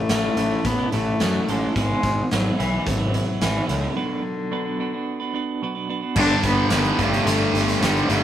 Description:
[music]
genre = quiet-loud alternative rock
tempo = 109 BPM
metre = 4/4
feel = straight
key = unclear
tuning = A4 = 444 Hz
[part]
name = rich cello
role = melody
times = 0.0-8.2 s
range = D3 to D4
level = -25 LUFS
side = left 2 dB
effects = slapback echo
[part]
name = clean electric guitar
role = arpeggios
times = 0.0-6.2 s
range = E2 to B4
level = -27 LUFS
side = right 4 dB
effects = tremolo
[part]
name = fuzz picked electric bass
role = bass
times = 0.1-8.2 s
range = G1 to F#2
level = -24 LUFS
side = equal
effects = overdrive
[part]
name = raw garage drum kit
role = drums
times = 0.1-8.2 s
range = crash cymbal, hi-hat, kick drum, snare drum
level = -26 LUFS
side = equal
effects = none
[part]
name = crunchy overdriven guitar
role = riff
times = 6.2-8.2 s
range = G2 to G3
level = -26 LUFS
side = left 6 dB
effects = none
[part]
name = sludgy distorted guitar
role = riff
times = 6.2-8.2 s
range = G2 to G3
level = -22 LUFS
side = right 4 dB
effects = overdrive
[sound]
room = light reverb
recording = rough rehearsal-room recording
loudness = -19 LUFS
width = side -10 dB against mid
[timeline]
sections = 0.0-6.2 A section; 6.2-8.2 B section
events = break 4.0-6.2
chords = 0.0 A; 1.8 E/G#; 4.0 Bm; 6.2 G5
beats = 0.09 0.65 1.20 | 1.75 2.31 2.86 3.41 | 3.96 4.52 5.07 5.62 | 6.17 6.72 7.27 7.82

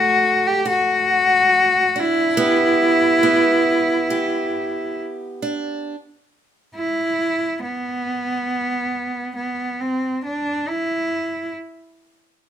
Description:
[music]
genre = folk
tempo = 69 BPM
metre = 4/4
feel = straight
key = E minor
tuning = A4 = 440 Hz
[part]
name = clear cello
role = melody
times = 0.0-11.5 s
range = B3 to G4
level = -18 LUFS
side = equal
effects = none
[part]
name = picked steel-string acoustic guitar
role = arpeggios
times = 0.0-5.9 s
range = A3 to G4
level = -23 LUFS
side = right 2 dB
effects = none
[sound]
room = moderate studio reverb, RT60 0.7 s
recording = minimal, uncompressed stereo recording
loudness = -17 LUFS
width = side -9 dB against mid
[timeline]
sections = 0.0-5.9 A section; 5.9-12.5 B section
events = none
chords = 0.0 D; 2.4 Em7; 5.9 N.C.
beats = 0.64 1.51 | 2.38 3.24 4.12 4.99 | 5.86 6.73 7.61 8.48 | 9.35 10.21 11.08

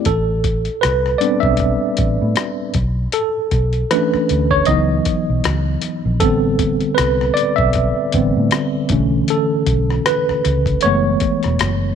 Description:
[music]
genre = R&B, neo-soul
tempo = 78 BPM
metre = 4/4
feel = swing 57% on 16ths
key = unclear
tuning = A4 = 440 Hz
[part]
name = bright tine electric piano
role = accompaniment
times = 0.0-11.9 s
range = D3 to E5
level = -17 LUFS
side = right 1 dB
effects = overdrive, fast stereo tremolo
[part]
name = vintage muted fingered electric bass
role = bass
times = 0.1-11.9 s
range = E1 to A2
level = -19 LUFS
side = equal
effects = none
[part]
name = dusty soul sampler-style drum kit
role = drums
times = 0.1-11.8 s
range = hi-hat, kick drum, rim click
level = -22 LUFS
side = left 3 dB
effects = none
[sound]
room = light reverb, digital ambience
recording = 1960s-style stereo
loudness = -15 LUFS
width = side -8 dB against mid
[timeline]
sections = 0.1-11.9 A section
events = tine electric piano solo 0.1-11.9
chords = 0.1 Am11; 2.7 Bm11; 4.7 C#m11; 6.2 Am11; 8.9 Bm11; 10.8 F#m11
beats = | 0.06 0.83 1.59 2.36 | 3.13 3.90 4.67 5.44 | 6.21 6.98 7.75 8.52 | 9.29 10.06 10.83 11.60

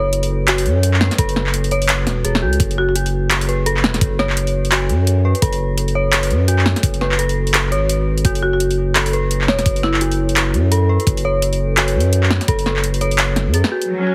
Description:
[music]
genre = half-time drum and bass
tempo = 170 BPM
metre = 4/4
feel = swing 59% on 16ths, half-time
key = F# minor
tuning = A4 = 440 Hz
[part]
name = dark detuned synth bell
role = arpeggios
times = 0.0-13.9 s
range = F#4 to C#5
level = -24 LUFS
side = equal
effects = chorus, phaser, tape echo
[part]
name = saturated sub bass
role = bass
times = 0.0-13.6 s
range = E1 to F#2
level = -20 LUFS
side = equal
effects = none
[part]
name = drum and bass drum kit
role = drums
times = 0.1-13.9 s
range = handclaps, hi-hat, snare drum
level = -22 LUFS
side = equal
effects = overdrive
[part]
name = electronic kick drum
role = drums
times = 1.2-12.6 s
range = none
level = -21 LUFS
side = equal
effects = overdrive
[part]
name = marimba with medium hard mallets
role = melody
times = 2.8-2.9, 8.4-10.0, 14.1 s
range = E4 to F#4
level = -26 LUFS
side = equal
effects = tape echo
[part]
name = rich symphonic string section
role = sustained chords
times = 13.9-14.1 s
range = F#3 to C#4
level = -20 LUFS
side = equal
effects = sidechain pumping
[sound]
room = light reverb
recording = heavily compressed radio sound, multiband compression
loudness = -17 LUFS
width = mono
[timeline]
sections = 0.0-13.9 A section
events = drop 0.0-13.9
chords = 0.0 F#madd9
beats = 0.13 0.48 0.83 | 1.19 1.54 1.89 2.25 | 2.60 2.95 3.31 3.66 | 4.01 4.36 4.72 5.07 | 5.42 5.78 6.13 6.48 | 6.83 7.19 7.54 7.89 | 8.25 8.60 8.95 9.30 | 9.66 10.01 10.36 10.72 | 11.07 11.42 11.78 12.13 | 12.48 12.84 13.19 13.54 | 13.89

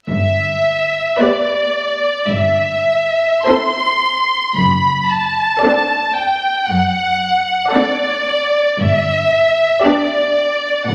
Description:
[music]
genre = classical, slow romantic movement for symphony orchestra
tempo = 50-58 BPM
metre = 4/4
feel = rubato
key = G major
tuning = A4 = 440 Hz
[part]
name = warm symphonic violin section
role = melody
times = 0.1-10.9 s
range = D5 to C6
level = -16 LUFS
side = equal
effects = none
[part]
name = dark symphonic double bass section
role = bass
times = 0.1-10.9 s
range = F#1 to A1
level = -25 LUFS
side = equal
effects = none
[part]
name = rich symphonic cello section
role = bass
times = 0.1-10.9 s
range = F#2 to A2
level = -25 LUFS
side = equal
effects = none
[part]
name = warm symphonic violin section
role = second line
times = 1.2-10.6 s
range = G4 to D5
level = -22 LUFS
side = equal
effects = none
[part]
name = rich symphonic viola section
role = accompaniment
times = 1.2-10.6 s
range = B3 to G4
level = -22 LUFS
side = equal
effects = none
[sound]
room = wet scoring stage reverb, RT60 1.8 s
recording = vinyl crackle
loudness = -15 LUFS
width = mono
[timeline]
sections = 0.1-10.9 A section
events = none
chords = 0.1 G; 2.3 Am7/G; 4.6 D7/F#; 8.8 G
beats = | 0.11 1.21 2.32 3.49 | 4.59 5.65 6.69 7.75 | 8.81 9.87 10.90

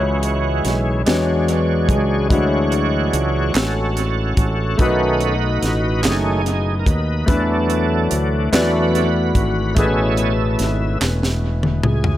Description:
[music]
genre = slow gospel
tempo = 48 BPM (dotted quarters)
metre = 6/8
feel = straight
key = A major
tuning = A4 = 439 Hz
[part]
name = clear concert grand piano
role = accompaniment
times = 0.0-12.2 s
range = B2 to D5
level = -21 LUFS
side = left 2 dB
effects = dub echo
[part]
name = bright tonewheel organ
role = sustained chords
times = 0.0-12.2 s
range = D#3 to C#5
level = -22 LUFS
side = right 2 dB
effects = slow rotary speaker, overdrive, chorus vibrato
[part]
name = fingered electric bass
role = bass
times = 0.0-12.2 s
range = E1 to E2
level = -20 LUFS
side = equal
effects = none
[part]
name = tight funk drum kit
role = drums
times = 0.2-12.2 s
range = hi-hat, kick drum, snare drum, toms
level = -20 LUFS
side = equal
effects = dub echo
[part]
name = group handclap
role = percussion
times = 3.5-11.4 s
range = none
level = -24 LUFS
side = right 4 dB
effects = none
[sound]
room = light reverb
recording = echo-heavy mix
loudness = -16 LUFS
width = side -13 dB against mid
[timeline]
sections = 0.0-12.2 A section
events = tonewheel organ solo 0.0-12.2; drum fill 11.0-12.2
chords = 0.0 C#m; 1.1 E13; 2.3 Dmaj9#11; 4.8 B7; 7.3 E7sus4; 8.5 E9sus4; 9.8 Amaj9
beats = 1.06 | 2.31 3.56 | 4.80 6.04 | 7.29 8.53 | 9.77 11.01

